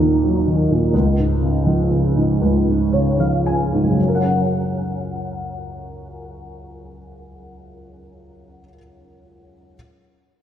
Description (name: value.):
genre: pop.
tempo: 37-44 BPM (dotted quarters).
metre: 6/8.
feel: straight.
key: F# major.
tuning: A4 = 439 Hz.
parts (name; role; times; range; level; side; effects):
dark concert grand piano; accompaniment; 0.0-9.8 s; C#2 to G#5; -17 LUFS; equal; ensemble chorus.
room: wet plate reverb, RT60 2.7 s.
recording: dreamy mix soaked in reverb.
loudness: -16 LUFS.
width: side -10 dB against mid.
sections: 0.0-4.0 A section; 4.0-7.2 B section.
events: slowing down 0.0-4.0; grand piano fill 2.4-4.0.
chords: 0.0 D#m; 0.9 C#; 4.0 F#.